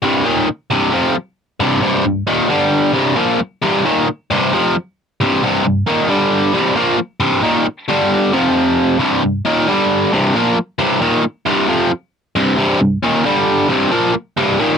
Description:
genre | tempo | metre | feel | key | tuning
rock | 134 BPM | 4/4 | straight | C minor | A4 = 441 Hz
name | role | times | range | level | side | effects
biting overdriven guitar | solo | 0.0-14.8 s | C2 to Bb3 | -13 LUFS | equal | none
room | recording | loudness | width
light reverb | dry, close 1970s-style studio recording | -13 LUFS | side -7 dB against mid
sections
0.0-9.0 A section; 9.0-14.8 A section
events
none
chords
0.0 Cm; 2.5 G5; 3.0 Cm; 6.1 G5; 6.5 Cm; 7.9 G5; 8.3 F5; 9.0 Cm; 9.7 G5; 10.1 Cm; 13.2 G5; 13.7 Cm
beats
| 0.02 0.47 0.93 1.38 | 1.83 2.27 2.73 3.17 | 3.62 4.07 4.52 4.97 | 5.42 5.87 6.32 6.76 | 7.21 7.66 8.11 8.55 | 9.00 9.45 9.90 10.34 | 10.79 11.24 11.69 12.13 | 12.58 13.03 13.47 13.92 | 14.36

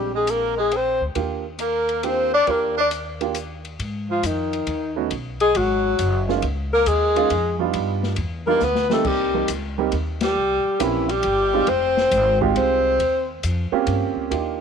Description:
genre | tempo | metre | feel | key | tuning
jazz, small-group swing and bop | 137 BPM | 3/4 | swing 67% on 8ths | Eb major, Ab major from 3.8 s | A4 = 440 Hz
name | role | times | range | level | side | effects
mellow alto saxophone | melody | 0.0-13.3 s | Eb4 to D5 | -21 LUFS | left 5 dB | none
breathy tenor saxophone | second line | 0.0-13.3 s | Eb3 to D4 | -26 LUFS | right 11 dB | none
warm upright piano | accompaniment | 0.0-14.6 s | G3 to G4 | -24 LUFS | right 12 dB | none
upright bass | bass | 0.0-14.6 s | F1 to Ab2 | -27 LUFS | left 1 dB | none
open jazz drum kit | drums | 0.3-14.4 s | crash cymbal, hi-hat, kick drum, ride cymbal, snare drum | -32 LUFS | left 7 dB | none
room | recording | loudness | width
light reverb | 1960s-style stereo with parts hard left and right | -19 LUFS | side -6 dB against mid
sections
0.0-3.8 A section; 3.8-14.3 B section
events
break 3.4-3.8; drum fill 8.6-9.1; band accent 10.1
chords
0.0 Bb13; 1.2 Ebmaj9; 3.8 Ab5; 5.1 B5; 6.4 Db6; 7.7 G7b13; 9.1 Cm7; 10.4 C7b9; 11.7 Fm9; 13.0 Eb13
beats
0.28 0.72 | 1.16 1.60 2.04 | 2.48 2.91 3.35 | 3.79 4.23 4.67 | 5.11 5.55 5.99 | 6.42 6.86 7.30 | 7.74 8.18 8.61 | 9.05 9.49 9.93 | 10.37 10.80 11.24 | 11.68 12.12 12.56 | 12.99 13.43 13.87 | 14.31

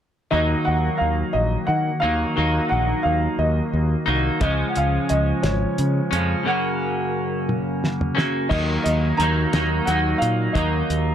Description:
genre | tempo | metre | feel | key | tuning
indie rock | 59 BPM (dotted quarters) | 6/8 | straight | unclear | A4 = 440 Hz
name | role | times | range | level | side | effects
dark upright piano | melody | 0.3-11.1 s | C#5 to A#5 | -26 LUFS | equal | analog delay
clean electric guitar | riff | 0.3-11.1 s | F#2 to D#4 | -22 LUFS | equal | double-tracked left and right
overdriven fingered electric bass | bass | 0.3-11.1 s | G#1 to D#3 | -23 LUFS | equal | none
cloth-damped thuddy drum kit | drums | 4.4-11.1 s | crash cymbal, hi-hat, kick drum, snare drum, toms | -26 LUFS | equal | none
room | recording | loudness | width
light reverb | none | -19 LUFS | side -9 dB against mid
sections
0.3-8.5 A section; 8.5-11.1 B section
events
break 6.5-8.5; drum fill 7.5-8.5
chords
0.3 D#m; 4.4 C#; 6.5 F#; 8.5 D#m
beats
| 0.32 1.34 | 2.37 3.39 | 4.42 5.44 | 6.47 7.49 | 8.51 9.54 | 10.56

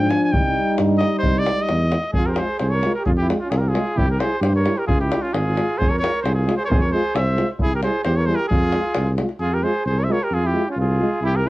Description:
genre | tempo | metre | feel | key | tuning
balkan folk, Balkan brass band | 132 BPM | 2/4 | straight | F harmonic minor | A4 = 443 Hz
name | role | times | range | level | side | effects
clear trumpet | melody | 0.0-11.5 s | F4 to Ab5 | -24 LUFS | equal | none
dark French horn | accompaniment | 0.0-11.5 s | D4 to F4 | -25 LUFS | left 3 dB | none
warm euphonium | accompaniment | 0.0-11.5 s | F3 to Ab3 | -26 LUFS | right 3 dB | none
mellow tuba | bass | 0.0-11.5 s | Ab1 to Ab2 | -22 LUFS | equal | transformer saturation
davul | percussion | 0.1-9.3 s | none | -23 LUFS | left 1 dB | none
mellow trumpet | second line | 2.2-11.5 s | Db4 to C5 | -26 LUFS | right 3 dB | none
room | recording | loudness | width
light reverb | worn, warbling old tape, cassette tape, warbly pitch drift | -18 LUFS | side -18 dB against mid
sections
0.0-2.1 A section; 2.1-9.4 B section; 9.4-11.5 B section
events
trumpet solo 0.0-2.1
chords
0.3 Cm; 2.1 Fm; 4.0 C; 4.9 Db; 5.8 Fm; 7.6 C; 8.5 Fm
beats
| 0.34 0.79 | 1.24 1.70 | 2.15 2.60 | 3.06 3.51 | 3.96 4.42 | 4.87 5.32 | 5.78 6.23 | 6.69 7.14 | 7.59 8.05 | 8.50 8.95 | 9.41 9.86 | 10.31 10.76 | 11.21

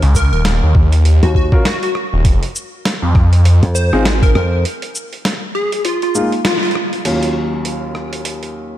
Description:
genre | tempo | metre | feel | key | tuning
glitch hop | 100 BPM | 4/4 | swing 58% on 16ths | Eb dorian | A4 = 440 Hz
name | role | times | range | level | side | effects
phased detuned saw bass | bass | 0.0-4.3 s | Eb1 to F2 | -11 LUFS | equal | phaser, overdrive
boom bap sampler-style drum kit | drums | 0.0-8.5 s | crash cymbal, hi-hat, rim click, shaker, snare drum | -22 LUFS | equal | studio reverb
electronic kick drum | drums | 0.1-4.3 s | none | -13 LUFS | equal | studio reverb
plucky unison lead | melody | 0.2-6.7 s | F4 to C5 | -21 LUFS | equal | phaser, ping-pong delay
slap bass with an envelope filter | bass | 1.2-4.6 s | Eb2 to F2 | -15 LUFS | equal | none
dark grand piano | stabs | 1.5-8.8 s | Eb2 to Bb4 | -20 LUFS | equal | vintage 12-bit sampler grit, sidechain pumping, low-pass filter, ping-pong delay
room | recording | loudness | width
light reverb, digital ambience | none | -12 LUFS | side -13 dB against mid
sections
0.0-7.1 A section; 7.1-8.8 B section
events
break 4.7-7.1; band accent 6.5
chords
0.0 Eb7(no3); 2.3 Fm; 4.7 Absus2; 7.1 Ebm7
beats
0.45 1.05 1.65 | 2.25 2.85 3.45 4.05 | 4.65 5.25 5.85 6.45 | 7.05 7.65 8.25

